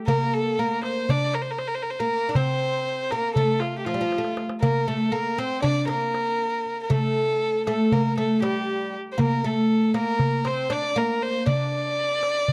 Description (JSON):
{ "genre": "Turkish makam ensemble", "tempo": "237 BPM (eighths)", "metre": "9/8", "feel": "straight", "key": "unclear", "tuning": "A4 = 439 Hz", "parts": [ { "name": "rich violin", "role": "melody", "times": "0.1-12.5 s", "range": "F4 to D5", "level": "-28 LUFS", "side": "equal", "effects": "none" }, { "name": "oud", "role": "second line", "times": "0.1-12.5 s", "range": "F3 to D4", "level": "-29 LUFS", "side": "equal", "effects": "none" }, { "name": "darbuka", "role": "percussion", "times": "0.1-12.5 s", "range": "none", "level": "-29 LUFS", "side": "equal", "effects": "none" } ], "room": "studio ambience", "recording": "dry, close 1970s-style studio recording", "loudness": "-24 LUFS", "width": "mono", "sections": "0.0-12.5 A section", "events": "drum fill 4.1-4.6", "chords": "none" }